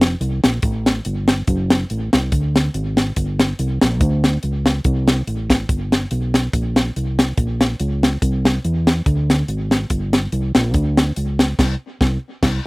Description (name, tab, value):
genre	uptempo gospel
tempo	142 BPM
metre	4/4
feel	swing 55% on 8ths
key	unclear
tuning	A4 = 439 Hz
part	fingered electric bass	bass	0.0-12.6 s	F1 to E2	-20 LUFS	equal	none
part	tight funk drum kit	drums	0.0-12.6 s	crash cymbal, hi-hat, kick drum, snare drum	-17 LUFS	equal	none
room	little or no reverb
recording	recorded outdoors, with no room sound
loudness	-16 LUFS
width	side -25 dB against mid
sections	0.0-12.7 A section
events	drum fill 11.6-12.7; band accent 11.6-12.7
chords	none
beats	0.21 0.63 1.05 | 1.47 1.90 2.32 2.74 | 3.16 3.58 4.00 4.42 | 4.84 5.27 5.69 6.11 | 6.53 6.95 7.37 7.79 | 8.21 8.63 9.06 9.48 | 9.90 10.32 10.74 11.16 | 11.59 12.01 12.43